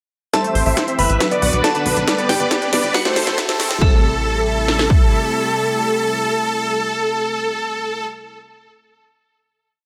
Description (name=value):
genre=uplifting trance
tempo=138 BPM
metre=4/4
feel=straight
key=A dorian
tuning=A4 = 441 Hz
part: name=dense compressed supersaw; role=melody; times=0.3-8.1 s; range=C4 to E5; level=-22 LUFS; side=equal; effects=sidechain pumping, low-pass filter, delay
part: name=glassy synth bell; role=second line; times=0.3-8.6 s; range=F#4 to B5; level=-27 LUFS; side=equal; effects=chorus, phaser, tape echo
part: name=warm concert grand piano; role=second line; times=0.3-8.6 s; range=A4 to E5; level=-32 LUFS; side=equal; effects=none
part: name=lush unison pad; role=sustained chords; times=0.3-8.1 s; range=C3 to G4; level=-30 LUFS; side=equal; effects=chorus, sidechain pumping
part: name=analog pluck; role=arpeggios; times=0.3-4.0 s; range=F#3 to G5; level=-29 LUFS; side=equal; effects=chorus, sidechain pumping, delay
part: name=techno drum kit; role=drums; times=0.3-5.0 s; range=kick drum, snare drum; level=-19 LUFS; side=equal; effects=high-pass filter on kick, high-pass filter on snare, high-pass filter on room
part: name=techno drum kit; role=drums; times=0.3-3.8 s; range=hi-hat, snare drum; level=-24 LUFS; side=equal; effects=none
part: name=riser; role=sound effects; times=2.1-3.8 s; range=none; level=-33 LUFS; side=equal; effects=none
part: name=tight sequencer bass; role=bass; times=0.6-5.1 s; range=D1 to B1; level=-25 LUFS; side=equal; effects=sidechain pumping
room=moderate recital hall reverb, RT60 1.6 s, digital ambience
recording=high-pass filter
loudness=-18 LUFS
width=mono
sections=0.3-3.8 build; 3.8-7.3 final chord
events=build-up 0.3-3.8; drum fill 0.3-3.8; filter sweep on supersaw synth 0.3-3.8; filter sweep 0.3-3.8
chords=0.3 Am7; 1.2 Bm; 2.1 G; 2.9 Am7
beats=| 0.34 0.77 1.21 1.64 | 2.08 2.51 2.94 3.38 | 3.81 4.25 4.68 5.12 | 5.55 5.99 6.42 6.86